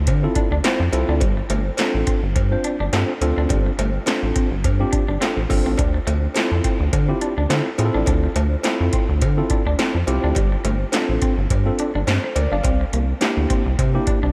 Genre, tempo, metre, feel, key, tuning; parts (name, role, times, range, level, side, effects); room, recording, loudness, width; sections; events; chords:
early-eighties boogie funk; 105 BPM; 4/4; swing 56% on 16ths; A4 = 439 Hz
rubbery square bass; bass; 0.0-14.3 s; G1 to D3; -23 LUFS; equal
electric guitar at the edge of break-up; riff; 0.1-14.3 s; G3 to D4; -31 LUFS; equal; lush chorus
electro analog drum machine; drums; 0.1-14.2 s; handclaps, hi-hat, kick drum, snare drum; -25 LUFS; equal
cowbell; percussion; 0.1-13.9 s; -34 LUFS; equal
tine electric piano; accompaniment; 0.2-14.2 s; Bb3 to F5; -27 LUFS; equal; overdrive
moderate cathedral reverb, RT60 4.8 s; dreamy mix soaked in reverb; -20 LUFS; mono
0.0-14.3 A section
0.0 Dm9; 1.2 G7sus4; 5.8 Dm9; 10.4 G7sus4; 12.6 C7